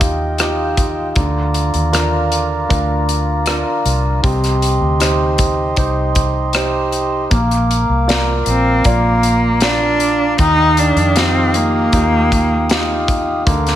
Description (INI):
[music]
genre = pop ballad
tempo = 78 BPM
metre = 4/4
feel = straight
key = unclear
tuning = A4 = 440 Hz
[part]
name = warm concert grand piano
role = accompaniment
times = 0.0-13.8 s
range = C3 to D5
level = -20 LUFS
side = right 1 dB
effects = none
[part]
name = mellow accordion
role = sustained chords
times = 0.0-13.8 s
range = F4 to Eb6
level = -21 LUFS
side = equal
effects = none
[part]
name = vintage muted fingered electric bass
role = bass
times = 0.0-13.8 s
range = Bb1 to F2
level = -19 LUFS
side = equal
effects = none
[part]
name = modern studio drum kit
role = drums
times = 0.0-13.8 s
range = hi-hat, kick drum, rim click, snare drum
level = -19 LUFS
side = left 1 dB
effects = none
[part]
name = rich cello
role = melody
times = 8.5-13.1 s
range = Bb3 to Eb4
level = -16 LUFS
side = equal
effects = none
[sound]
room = light reverb, small room ambience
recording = none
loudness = -13 LUFS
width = side -12 dB against mid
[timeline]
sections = 0.0-13.8 A section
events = none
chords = 0.0 Ebadd9; 1.2 Bb/D; 4.2 Cm; 7.3 Bb; 10.4 Ebadd9